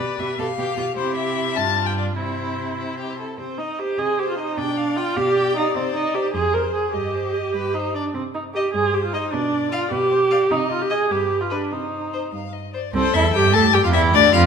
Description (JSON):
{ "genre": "quick classical-period movement for string quartet", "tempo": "101 BPM (dotted quarters)", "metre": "6/8", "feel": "straight", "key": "C major, C minor from 3.4 s", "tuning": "A4 = 440 Hz", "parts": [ { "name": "clear violin", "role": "melody", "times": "0.0-14.4 s", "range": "B4 to A5", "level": "-24 LUFS", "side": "left 10 dB", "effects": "none" }, { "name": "clear violin", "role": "second line", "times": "0.0-14.5 s", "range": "D4 to G5", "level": "-30 LUFS", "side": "left 5 dB", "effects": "none" }, { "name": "warm viola", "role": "accompaniment", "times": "0.0-14.5 s", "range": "C4 to Bb4", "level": "-21 LUFS", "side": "right 2 dB", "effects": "none" }, { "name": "rich cello", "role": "bass", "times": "0.0-14.5 s", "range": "C2 to C3", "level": "-25 LUFS", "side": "right 3 dB", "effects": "none" } ], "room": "wet recital hall reverb, RT60 1.8 s", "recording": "minimal, uncompressed stereo recording", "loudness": "-19 LUFS", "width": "side -6 dB against mid", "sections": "0.0-3.4 A section; 3.4-12.9 B section; 12.9-14.5 B section", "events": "none", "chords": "0.0 G7/B; 1.0 C; 1.6 G5; 2.2 C; 3.4 Cm; 4.6 G7/B; 5.8 Cm; 6.3 Fm; 6.9 Cm/G; 7.5 G; 8.1 Cm; 9.3 G7/B; 10.5 Cm; 11.1 G; 11.7 Cm; 12.9 C" }